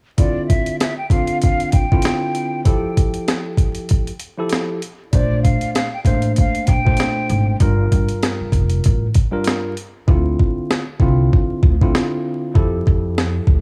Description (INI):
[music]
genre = hip hop, boom-bap hip-hop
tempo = 97 BPM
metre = 4/4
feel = swing 59% on 16ths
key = D minor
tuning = A4 = 439 Hz
[part]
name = breathy mellow silver concert flute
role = melody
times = 0.2-7.6 s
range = D5 to G5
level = -27 LUFS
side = equal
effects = high-pass filter, low-pass filter, tape echo
[part]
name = tine electric piano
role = accompaniment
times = 0.2-13.6 s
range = G2 to C5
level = -25 LUFS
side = equal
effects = cassette tape, high-pass filter, low-pass filter
[part]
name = boom bap sampler-style drum kit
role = drums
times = 0.2-13.6 s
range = hi-hat, kick drum, snare drum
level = -19 LUFS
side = equal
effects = none
[part]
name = upright bass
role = bass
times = 5.1-13.6 s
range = F1 to F2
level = -21 LUFS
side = equal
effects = none
[sound]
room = little or no reverb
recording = vinyl crackle, studio ambience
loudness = -18 LUFS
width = mono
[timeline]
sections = 0.2-10.1 A section; 10.1-13.6 B section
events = hi-hats muted 10.1-13.6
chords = 0.2 Dm9; 2.7 Fmaj9; 5.1 Bbmaj9; 7.6 Gm7; 10.1 Dm9; 12.6 Fmaj9